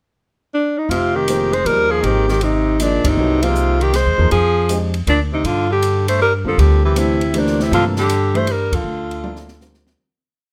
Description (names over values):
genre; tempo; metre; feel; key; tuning
modal jazz; 158 BPM; 3/4; swing 66% on 8ths; F dorian; A4 = 440 Hz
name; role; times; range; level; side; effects
mellow alto saxophone; melody; 0.5-9.9 s; D4 to C5; -20 LUFS; equal; none
clear tenor saxophone; second line; 0.9-9.9 s; Bb2 to A3; -26 LUFS; equal; none
upright bass; bass; 0.9-9.9 s; F1 to G2; -21 LUFS; equal; none
open jazz drum kit; drums; 0.9-10.0 s; hi-hat, kick drum, ride cymbal, snare drum, toms; -30 LUFS; equal; none
warm concert grand piano; accompaniment; 1.3-10.0 s; C3 to Eb5; -25 LUFS; equal; none
room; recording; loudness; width
light reverb; none; -17 LUFS; mono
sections
0.0-0.9 pickup bar; 0.9-10.0 A section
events
band accent 3.0, 8.7; fade-out 8.2-10.0; drum fill 9.2-10.0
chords
0.0 N.C.; 0.9 Fm11; 5.4 Gm11